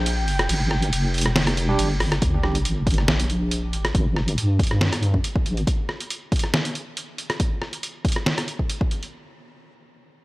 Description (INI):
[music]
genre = deep dubstep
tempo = 139 BPM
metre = 4/4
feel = swing 53% on 16ths, half-time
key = G minor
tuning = A4 = 439 Hz
[part]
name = breathy flute-like synth lead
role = melody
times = 0.0-1.8 s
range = G5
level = -33 LUFS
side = equal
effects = lush chorus, dub echo
[part]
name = deep soft wobble bass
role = bass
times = 0.0-5.7 s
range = F1 to G2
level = -22 LUFS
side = equal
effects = chorus
[part]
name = trip hop sampler-style drum kit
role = drums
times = 0.1-9.1 s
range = crash cymbal, hi-hat, rim click, snare drum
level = -25 LUFS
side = equal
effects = none
[part]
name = overdriven tine electric piano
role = stabs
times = 1.7-2.6 s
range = G3 to G4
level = -30 LUFS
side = right 3 dB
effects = fast tremolo, dub echo
[part]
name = electronic kick drum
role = drums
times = 2.2-8.9 s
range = none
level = -22 LUFS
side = equal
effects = overdrive
[part]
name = sub drop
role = sound effects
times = 2.2-3.9 s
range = none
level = -30 LUFS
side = equal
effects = none
[sound]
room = little or no reverb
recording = dry, gritty hardware recording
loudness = -20 LUFS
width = side -20 dB against mid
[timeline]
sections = 0.0-2.2 A section; 2.2-9.1 B section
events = drop 0.0-2.2; kick drops out 0.5-2.2; drum fill 2.0; impact 2.2-3.9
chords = 0.0 G5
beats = 0.06 | 0.49 0.93 1.36 1.79 | 2.22 2.65 3.08 3.52 | 3.95 4.38 4.81 5.24 | 5.67 6.11 6.54 6.97 | 7.40 7.83 8.26 8.70